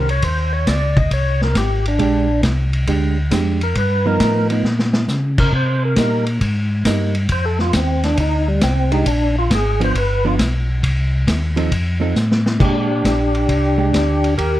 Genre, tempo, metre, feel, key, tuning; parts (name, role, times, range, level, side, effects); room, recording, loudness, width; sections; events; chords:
soul jazz organ trio; 136 BPM; 4/4; swing 68% on 8ths; Bb mixolydian; A4 = 440 Hz
percussive tonewheel organ; melody; 0.0-14.6 s; G3 to Eb5; -20 LUFS; equal; slow rotary speaker, overdrive, plate reverb
vintage hollow-body jazz guitar; accompaniment; 0.0-13.9 s; F3 to A4; -21 LUFS; right 4 dB
mellow tonewheel organ; bass; 0.0-14.6 s; G1 to Db3; -18 LUFS; equal; chorus vibrato, slow rotary speaker
vintage drum kit; drums; 0.1-14.5 s; crash cymbal, hi-hat, kick drum, ride cymbal, snare drum; -21 LUFS; equal
light reverb; dark, warm production; -15 LUFS; side -14 dB against mid
0.0-12.6 A section; 12.6-14.6 B section
tonewheel organ solo 0.0-12.6; drum fill 4.6-5.1, 12.2-12.6
0.0 Eb7(no3); 2.0 Bb13; 3.8 G7alt; 5.5 Cm7; 7.3 F5; 9.1 Bb7; 9.9 G7; 10.8 Cm; 11.7 F7; 12.6 Bb13